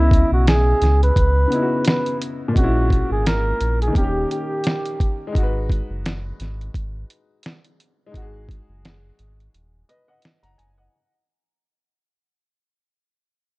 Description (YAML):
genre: lo-fi hip hop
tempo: 86 BPM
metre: 4/4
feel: swing 56% on 16ths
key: G# minor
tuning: A4 = 440 Hz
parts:
  - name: breathy flugelhorn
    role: melody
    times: 0.0-5.3 s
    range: E4 to B4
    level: -22 LUFS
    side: right 1 dB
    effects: low-pass filter
  - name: clear upright piano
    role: accompaniment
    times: 0.0-11.1 s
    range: A#2 to A#5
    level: -25 LUFS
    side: left 2 dB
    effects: cassette tape, low-pass filter
  - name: sub bass with octave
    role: bass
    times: 0.0-10.9 s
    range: D#1 to C#2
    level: -19 LUFS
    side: equal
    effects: none
  - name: lo-fi sampler-style drum kit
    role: drums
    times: 0.1-10.8 s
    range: hi-hat, kick drum, snare drum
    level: -20 LUFS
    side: equal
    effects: none
room: small room ambience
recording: dark, warm production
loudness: -17 LUFS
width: side -22 dB against mid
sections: 0.0-10.9 A section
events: fade-out 0.0-10.9; break 9.5-10.9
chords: 0.0 C#m9; 2.6 A#m7b5; 4.0 D#7; 5.3 G#m7